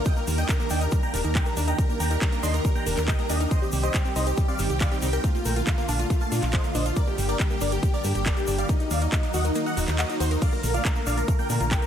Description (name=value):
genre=uplifting trance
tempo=139 BPM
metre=4/4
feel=straight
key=unclear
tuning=A4 = 440 Hz
part: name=big supersaw lead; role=melody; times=0.0-11.9 s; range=Eb4 to C6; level=-30 LUFS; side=right 1 dB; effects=phaser, sidechain pumping, ping-pong delay
part: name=plucky unison lead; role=second line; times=0.0-11.9 s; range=Eb4 to C6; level=-36 LUFS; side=left 2 dB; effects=lush chorus, sidechain pumping, ping-pong delay
part: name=analog string pad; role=sustained chords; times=0.0-11.9 s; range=D3 to G4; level=-33 LUFS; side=right 1 dB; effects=ensemble chorus, sidechain pumping
part: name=wide unison pluck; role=arpeggios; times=0.1-11.9 s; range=G3 to Bb4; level=-34 LUFS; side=left 1 dB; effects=sidechain pumping, ping-pong delay
part: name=electronic kick drum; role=drums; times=0.1-11.8 s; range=none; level=-24 LUFS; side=equal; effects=none
part: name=house drum kit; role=drums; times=0.1-11.9 s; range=crash cymbal, handclaps, hi-hat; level=-32 LUFS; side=right 1 dB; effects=none
part: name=tube shaker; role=percussion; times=0.1-11.9 s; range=none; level=-40 LUFS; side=left 5 dB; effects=none
part: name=solid FM bass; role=bass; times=0.3-11.8 s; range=Eb1 to Bb2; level=-26 LUFS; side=equal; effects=sidechain pumping
room=digital ambience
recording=none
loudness=-22 LUFS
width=side -9 dB against mid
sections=0.0-11.9 A section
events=kick drops out 9.6-10.4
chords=0.1 Ebmaj7; 3.5 Cm; 5.2 Bbmaj7; 7.0 Gm; 8.7 Ebm; 10.4 Bbmaj7